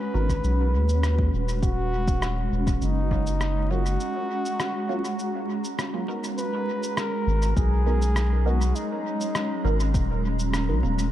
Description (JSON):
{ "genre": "ambient dub", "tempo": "101 BPM", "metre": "4/4", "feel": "straight", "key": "unclear", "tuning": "A4 = 440 Hz", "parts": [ { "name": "trumpet with bucket mute", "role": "melody", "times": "0.0-9.9 s", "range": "D#4 to B4", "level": "-31 LUFS", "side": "left 1 dB", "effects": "dub echo" }, { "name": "granular cloud pad", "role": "sustained chords", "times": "0.0-11.1 s", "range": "F#3 to A#5", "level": "-30 LUFS", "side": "right 1 dB", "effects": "built-in reverb, vintage 12-bit sampler grit" }, { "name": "filtered dub chord stab", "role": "stabs", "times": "0.1-11.1 s", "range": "F#3 to E#5", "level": "-35 LUFS", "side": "right 3 dB", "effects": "phaser, dub echo" }, { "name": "soft dub sub bass", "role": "bass", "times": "0.1-11.1 s", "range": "D#1 to D#2", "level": "-23 LUFS", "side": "equal", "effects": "none" }, { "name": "electronic kick drum", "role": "drums", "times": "0.3-3.2, 7.6-10.1 s", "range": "none", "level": "-26 LUFS", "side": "equal", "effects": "overdrive, small room ambience" }, { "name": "electronic shaker and rim click", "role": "drums", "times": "0.3-11.1 s", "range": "none", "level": "-34 LUFS", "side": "equal", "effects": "small room ambience, dub echo" } ], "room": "light reverb", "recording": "echo-heavy mix, vinyl crackle", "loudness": "-22 LUFS", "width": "side -12 dB against mid", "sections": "0.0-6.4 A section; 6.4-11.1 B section", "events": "break 4.0-6.4", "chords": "0.0 G#m7; 1.6 D#m7", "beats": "0.44 1.03 | 1.63 2.22 2.81 3.41 | 4.00 4.60 5.19 5.79 | 6.38 6.97 7.57 8.16 | 8.76 9.35 9.94 10.54" }